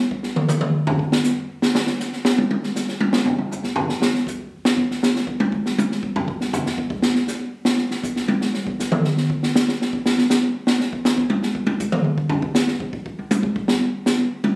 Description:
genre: jazz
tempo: 159 BPM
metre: 4/4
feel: swing 66% on 8ths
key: none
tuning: none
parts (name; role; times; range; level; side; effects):
- open jazz drum kit; drums; 0.1-14.6 s; hi-hat, kick drum, snare drum, toms; -18 LUFS; equal; none
room: wet studio reverb, RT60 0.9 s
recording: recorded on a phone in the room, club reverb, compression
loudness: -18 LUFS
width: side -30 dB against mid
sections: 0.0-13.7 A section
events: drum solo 0.0-14.6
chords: none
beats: | 0.11 0.49 0.86 1.24 | 1.62 2.00 2.38 2.75 | 3.13 3.51 3.89 4.26 | 4.64 5.02 5.40 5.77 | 6.15 6.53 6.91 7.28 | 7.66 8.04 8.41 8.79 | 9.17 9.54 9.92 10.30 | 10.67 11.05 11.43 11.80 | 12.18 12.56 12.93 13.31 | 13.69 14.06 14.44

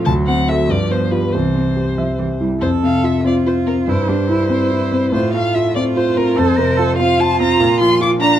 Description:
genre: quick classical-period movement for piano trio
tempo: 96 BPM (dotted quarters)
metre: 6/8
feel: straight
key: F major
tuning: A4 = 439 Hz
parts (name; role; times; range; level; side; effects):
- rich violin; melody; 0.0-8.4 s; Bb4 to D6; -20 LUFS; left 2 dB; none
- rich cello; second line; 0.0-8.4 s; E3 to Bb4; -20 LUFS; right 6 dB; none
- warm concert grand piano; accompaniment; 0.0-8.4 s; C2 to E5; -16 LUFS; left 1 dB; none
room: moderate studio reverb, RT60 0.8 s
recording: dark, warm production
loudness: -14 LUFS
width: side -11 dB against mid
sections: 0.0-2.6 A section; 2.6-8.4 B section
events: none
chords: 0.1 D7; 0.7 G7; 1.3 C; 2.6 F; 3.9 C/G; 5.1 F/A; 6.4 F5; 7.6 Bb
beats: | 0.06 0.69 | 1.33 1.98 | 2.63 3.25 | 3.88 4.51 | 5.13 5.75 | 6.37 6.98 | 7.59 8.21

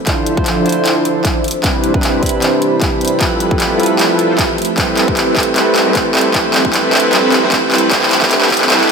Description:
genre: future bass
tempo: 153 BPM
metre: 4/4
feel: swing 55% on 16ths, half-time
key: unclear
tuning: A4 = 438 Hz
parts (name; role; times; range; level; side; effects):
- airy breathy pad; sustained chords; 0.0-8.9 s; E3 to B5; -23 LUFS; equal; chorus, phaser, sidechain pumping
- barky tine electric piano; accompaniment; 0.1-8.9 s; C3 to B5; -17 LUFS; right 3 dB; auto-pan, sidechain pumping, digital delay
- soft supersaw; riff; 0.1-8.9 s; F3 to C5; -16 LUFS; equal; sidechain pumping, low-pass filter, digital delay
- big-room dance drum kit; drums; 0.1-8.9 s; handclaps, hi-hat; -15 LUFS; equal; none
- electronic kick drum; drums; 0.1-8.6 s; none; -20 LUFS; left 1 dB; none
- riser; sound effects; 6.3-8.9 s; none; -34 LUFS; right 1 dB; none
room: wet lush hall reverb, RT60 1.7 s, digital ambience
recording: high-pass filter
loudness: -11 LUFS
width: side -5 dB against mid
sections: 0.0-8.9 A section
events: build-up 0.0-8.9; drum fill 0.0-8.9; filter sweep on supersaw synth 0.0-8.9; filter sweep 0.0-8.9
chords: 0.0 Dm9; 1.4 Cmaj9; 3.2 Fmaj9#11; 4.8 Am9; 6.1 Dm9; 7.7 Cmaj9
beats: | 0.07 0.46 0.85 1.25 | 1.64 2.03 2.42 2.82 | 3.21 3.60 3.99 4.38 | 4.78 5.17 5.56 5.95 | 6.34 6.74 7.13 7.52 | 7.91 8.31 8.70

